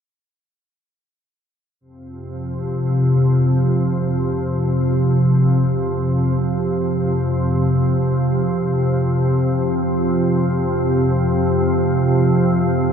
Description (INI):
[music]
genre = ambient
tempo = free time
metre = none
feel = none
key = unclear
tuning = A4 = 440 Hz
[part]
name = organ-like drone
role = solo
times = 2.2-12.9 s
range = F2 to C3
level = -16 LUFS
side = equal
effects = ensemble chorus, built-in reverb, tape echo
[sound]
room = wet huge ambient reverb, RT60 8.3 s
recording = none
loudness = -16 LUFS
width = side -7 dB against mid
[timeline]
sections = 1.8-12.9 A section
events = none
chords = 1.8 F5